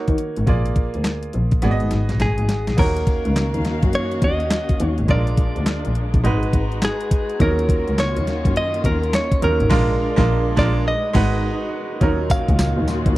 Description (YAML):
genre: R&B, new jack swing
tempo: 104 BPM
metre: 4/4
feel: swing 63% on 16ths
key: Eb minor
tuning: A4 = 440 Hz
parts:
  - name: bright grand piano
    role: accompaniment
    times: 0.0-13.2 s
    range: Gb3 to Eb5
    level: -26 LUFS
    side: right 4 dB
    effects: none
  - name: clear double bass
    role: bass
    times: 0.1-13.1 s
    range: Ab1 to Eb3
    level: -21 LUFS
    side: equal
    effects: none
  - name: crisp 8-bit digital drum machine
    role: drums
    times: 0.1-13.2 s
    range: crash cymbal, handclaps, hi-hat, kick drum, snare drum, tambourine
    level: -20 LUFS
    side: equal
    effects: overdrive
  - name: direct-recorded clean electric guitar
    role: melody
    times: 2.2-13.2 s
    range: Ab4 to F5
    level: -24 LUFS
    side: equal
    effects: spring reverb, tape echo
  - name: muted studio string section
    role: sustained chords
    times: 2.8-13.2 s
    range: Bb2 to Bb5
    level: -28 LUFS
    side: left 2 dB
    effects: none
room: little or no reverb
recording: dry, close 1970s-style studio recording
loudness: -17 LUFS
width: side -17 dB against mid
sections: 0.0-2.8 A section; 2.8-12.0 B section; 12.0-13.2 C section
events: drum fill 1.6-2.8; band accent 9.7-12.0; break 10.9-12.0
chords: 0.5 Bb7; 1.6 Abm7; 2.8 Ebm7; 5.1 Bb7; 6.2 Abm7; 7.4 Ebm7; 9.7 Bb7; 10.9 Abm7; 12.0 Ebm7